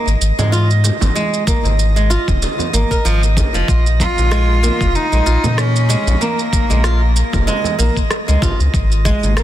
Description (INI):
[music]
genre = organic downtempo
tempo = 95 BPM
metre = 4/4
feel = swing 56% on 16ths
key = Bb minor pentatonic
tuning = A4 = 441 Hz
[part]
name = flamenco guitar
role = arpeggios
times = 0.0-9.4 s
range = F3 to Bb4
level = -21 LUFS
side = equal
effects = ping-pong delay
[part]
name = drifting glass-harmonics texture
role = texture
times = 0.0-9.4 s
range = Eb5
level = -26 LUFS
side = right 7 dB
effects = chorus, built-in reverb
[part]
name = warm sub bass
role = bass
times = 0.1-9.4 s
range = Eb1 to Bb2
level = -14 LUFS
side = equal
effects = none
[part]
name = electronic shaker and rim click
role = drums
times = 0.1-9.4 s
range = none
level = -24 LUFS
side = right 3 dB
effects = soft clipping on snare
[part]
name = congas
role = percussion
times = 0.4-9.3 s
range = none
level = -26 LUFS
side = right 3 dB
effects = none
[part]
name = electronic kick drum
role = drums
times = 1.5-9.2 s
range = none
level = -18 LUFS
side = equal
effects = none
[part]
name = rich cello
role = melody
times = 4.0-7.5 s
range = Bb3 to F4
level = -20 LUFS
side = equal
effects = ping-pong delay
[sound]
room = light reverb, digital ambience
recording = dense, heavily limited modern master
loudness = -13 LUFS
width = side -12 dB against mid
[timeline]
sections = 0.0-9.4 A section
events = none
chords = 0.0 Ab5; 3.7 Bb7(no3); 8.7 Ab5